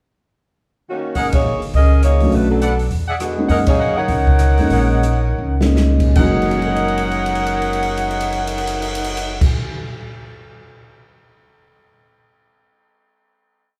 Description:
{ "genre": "jazz, big band swing", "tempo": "144-206 BPM", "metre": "4/4", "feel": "swing 61% on 8ths", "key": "F# major", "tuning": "A4 = 439 Hz", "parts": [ { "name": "mellow saxophone section", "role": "melody", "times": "0.9-9.4 s", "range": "D3 to F#5", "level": "-23 LUFS", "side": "equal", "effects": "plate reverb" }, { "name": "mellow trumpet section", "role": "stabs", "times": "1.2-9.5 s", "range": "G#4 to F#5", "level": "-26 LUFS", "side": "equal", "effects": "none" }, { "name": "upright bass", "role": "bass", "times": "1.2-9.4 s", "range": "F#1 to F#2", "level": "-21 LUFS", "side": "equal", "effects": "none" }, { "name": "swinging big-band drum kit", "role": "drums", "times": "1.2-11.0 s", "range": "crash cymbal, hi-hat, kick drum, ride cymbal, rim click, snare drum", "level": "-24 LUFS", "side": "equal", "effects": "none" }, { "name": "warm grand piano", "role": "accompaniment", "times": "2.2-9.7 s", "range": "F#2 to F#6", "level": "-23 LUFS", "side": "equal", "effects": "none" } ], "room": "wet large studio reverb, RT60 1.0 s", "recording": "heard from further back in the room", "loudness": "-17 LUFS", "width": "mono", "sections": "0.0-1.2 pickup bar; 1.2-6.2 A section; 6.2-9.5 final chord", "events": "band accent 1.3, 3.6; slowing down 3.5-6.2; drum fill 5.4-5.8, 6.4-9.4", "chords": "0.0 F#6; 1.2 F#69; 2.3 Bm7; 2.9 E9; 3.5 F#69" }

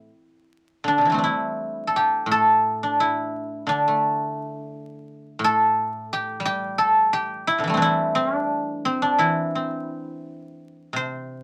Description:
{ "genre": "chinese traditional, Chinese solo plucked strings", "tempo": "86 BPM", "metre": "4/4", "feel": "uneven beats, rubato", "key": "A yu mode", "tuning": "A4 = 439 Hz", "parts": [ { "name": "guzheng", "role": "solo", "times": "0.0-11.4 s", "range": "A2 to C5", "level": "-23 LUFS", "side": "equal", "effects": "none" } ], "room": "moderate club reverb, RT60 0.6 s", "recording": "vinyl crackle", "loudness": "-23 LUFS", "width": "mono", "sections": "0.8-11.4 A section", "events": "none", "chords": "none" }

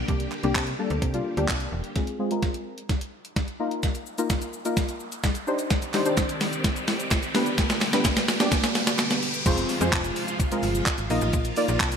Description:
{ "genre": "dance-pop", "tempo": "128 BPM", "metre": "4/4", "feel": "straight", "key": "unclear", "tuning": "A4 = 440 Hz", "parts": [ { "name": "string machine, full ensemble", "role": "sustained chords", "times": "0.0-1.9, 5.7-12.0 s", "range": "C3 to D5", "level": "-32 LUFS", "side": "equal", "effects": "ensemble chorus, sidechain pumping, low-pass filter" }, { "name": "slap-like FM bass", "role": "bass", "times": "0.0-1.8, 9.5-12.0 s", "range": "E1 to C3", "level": "-28 LUFS", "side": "equal", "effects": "sidechain pumping" }, { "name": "deep mellow chord stab", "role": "accompaniment", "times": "0.1-11.8 s", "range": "G3 to Eb5", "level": "-28 LUFS", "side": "left 1 dB", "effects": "chorus, sidechain pumping, low-pass filter" }, { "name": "crisp 8-bit digital drum machine", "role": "drums", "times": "0.1-12.0 s", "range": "crash cymbal, handclaps, hi-hat, kick drum, shaker, snare drum", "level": "-25 LUFS", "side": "equal", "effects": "none" }, { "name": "group handclap", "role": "percussion", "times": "0.3-1.6, 5.9-9.1 s", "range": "none", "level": "-39 LUFS", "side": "right 6 dB", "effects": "none" }, { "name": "riser and downlifter", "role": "sound effects", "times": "3.5-12.0 s", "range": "none", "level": "-34 LUFS", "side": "equal", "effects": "none" } ], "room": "moderate plate reverb, RT60 1.7 s", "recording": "bright 1980s-style digital production", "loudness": "-23 LUFS", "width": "side -7 dB against mid", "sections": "0.0-2.0 A section; 2.0-9.5 B section; 9.5-12.0 C section", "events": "build-up 2.0-9.5; drum fill 2.0-9.5; filter sweep 2.0-9.5; riser 3.5-9.5; drop 9.5-12.0", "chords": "0.0 Gm; 2.0 Fm; 3.6 Bbsus4; 5.5 Cmadd9; 7.3 G; 9.5 Fm; 11.1 Bbsus4" }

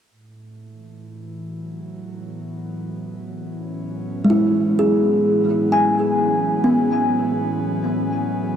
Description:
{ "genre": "ambient", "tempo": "50 BPM", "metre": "3/4", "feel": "straight", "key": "A major", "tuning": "A4 = 440 Hz", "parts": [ { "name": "airy breathy pad", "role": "sustained chords", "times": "0.1-8.6 s", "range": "A2 to C#4", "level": "-26 LUFS", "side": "equal", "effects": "chorus" }, { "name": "kalimba", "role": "arpeggios", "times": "4.2-8.6 s", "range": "G#3 to G#5", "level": "-17 LUFS", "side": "equal", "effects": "diffuse ambient delay" } ], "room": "wet huge ambient reverb, RT60 8.8 s", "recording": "dark, warm production", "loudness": "-17 LUFS", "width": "side -8 dB against mid", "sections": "0.1-8.6 A section", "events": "fade-in on analog synth pad 0.1-8.6", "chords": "0.1 A69" }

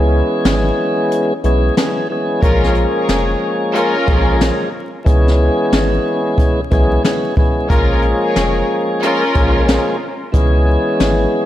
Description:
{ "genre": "hip hop, boom-bap hip-hop", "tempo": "91 BPM", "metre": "4/4", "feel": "swing 62% on 16ths", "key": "Bb minor", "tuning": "A4 = 440 Hz", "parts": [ { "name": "tonewheel organ", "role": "accompaniment", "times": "0.0-11.5 s", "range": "Fb3 to Ab4", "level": "-16 LUFS", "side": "left 1 dB", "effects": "overdrive, slow rotary speaker, high-pass filter, low-pass filter" }, { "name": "soft dub sub bass", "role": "bass", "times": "0.0-11.3 s", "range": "F1 to Db2", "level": "-16 LUFS", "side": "equal", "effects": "none" }, { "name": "jazz brush drum kit", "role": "drums", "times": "0.5-11.2 s", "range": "hi-hat, kick drum, snare drum", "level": "-17 LUFS", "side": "equal", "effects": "none" }, { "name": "warm studio string section", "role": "stabs", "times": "2.4-9.8 s", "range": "Db4 to Db5", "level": "-20 LUFS", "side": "left 1 dB", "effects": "high-pass filter, low-pass filter, analog delay" } ], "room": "moderate plate reverb, RT60 1.7 s, small room ambience", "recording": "dreamy mix soaked in reverb, vinyl crackle", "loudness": "-13 LUFS", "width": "side -13 dB against mid", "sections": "0.0-11.5 A section", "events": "break 0.0-2.4", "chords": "0.0 Dbm7; 2.4 Bbm7; 5.1 Dbm7; 7.7 Bbm7; 10.3 Dbm7" }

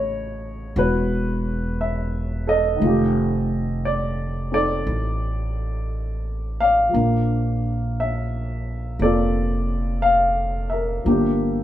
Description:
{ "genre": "jazz ballad", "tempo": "58 BPM", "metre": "4/4", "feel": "swing 66% on 8ths", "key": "F major", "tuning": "A4 = 439 Hz", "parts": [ { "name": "dark baby grand piano", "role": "accompaniment", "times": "0.0-11.6 s", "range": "C#3 to F5", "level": "-21 LUFS", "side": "left 1 dB", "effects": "none" }, { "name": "upright bass", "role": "bass", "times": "0.0-11.6 s", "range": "E1 to Bb1", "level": "-24 LUFS", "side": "equal", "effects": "none" } ], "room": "moderate studio reverb, RT60 0.8 s", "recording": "band playing live in one room", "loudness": "-20 LUFS", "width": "side -12 dB against mid", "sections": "0.0-11.6 A section", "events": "none", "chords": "0.0 A69; 2.8 F13; 6.9 Bbmaj7; 11.0 Gm7" }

